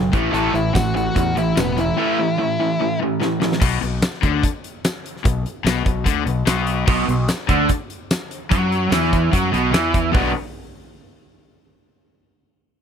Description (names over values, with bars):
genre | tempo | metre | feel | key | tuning
classic rock | 147 BPM | 4/4 | straight | B minor | A4 = 440 Hz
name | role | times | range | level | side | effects
biting overdriven guitar | riff | 0.0-3.6, 6.9-10.3 s | A2 to B3 | -21 LUFS | right 13 dB | none
raw garage guitar | riff | 0.0-10.3 s | A2 to F#4 | -22 LUFS | left 12 dB | overdrive
growling fingered electric bass | bass | 0.0-10.3 s | E1 to F#2 | -23 LUFS | equal | overdrive
huge arena drum kit | drums | 0.1-10.2 s | crash cymbal, hi-hat, kick drum, snare drum, tambourine, toms | -22 LUFS | equal | none
octave-fuzz lead guitar | second line | 0.3-3.0 s | B3 to A4 | -23 LUFS | left 3 dB | distortion
room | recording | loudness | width
small room ambience | dry, close 1970s-style studio recording | -17 LUFS | side -8 dB against mid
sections
0.0-3.6 A section; 3.6-10.1 B section; 10.1-11.8 C section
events
drum fill 3.2-3.6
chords
0.1 A5; 3.6 Bm; 10.1 B5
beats
| 0.33 0.74 1.16 1.57 | 1.98 2.39 2.80 3.21 | 3.62 4.03 4.43 4.84 | 5.25 5.66 6.07 6.47 | 6.88 7.29 7.70 8.11 | 8.52 8.92 9.33 9.74 | 10.15